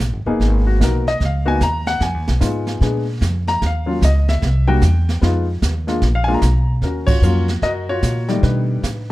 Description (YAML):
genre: jazz piano trio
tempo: 149 BPM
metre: 4/4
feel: swing 64% on 8ths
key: Eb minor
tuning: A4 = 442 Hz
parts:
  - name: upright bass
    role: bass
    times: 0.0-9.1 s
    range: Eb1 to B2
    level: -17 LUFS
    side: equal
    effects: none
  - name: jazz brush drum kit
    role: drums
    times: 0.0-9.1 s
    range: brushed snare drum, crash cymbal, hi-hat, kick drum, snare drum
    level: -24 LUFS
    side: right 2 dB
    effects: none
  - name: warm baby grand piano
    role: melody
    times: 0.3-9.1 s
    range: Eb3 to Bb5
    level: -20 LUFS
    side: left 2 dB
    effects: plate reverb
room: light reverb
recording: none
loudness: -15 LUFS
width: side -17 dB against mid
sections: 0.0-6.8 A section; 6.8-9.1 B section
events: grand piano solo 0.0-6.8; band accent 7.0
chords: 0.4 Abm9; 2.0 Fm7b5; 2.8 Bb7b9; 3.6 Eb7sus2; 4.4 C; 5.2 Fm7b5; 6.0 Bb7(no3); 6.8 Ebm9; 8.4 B7alt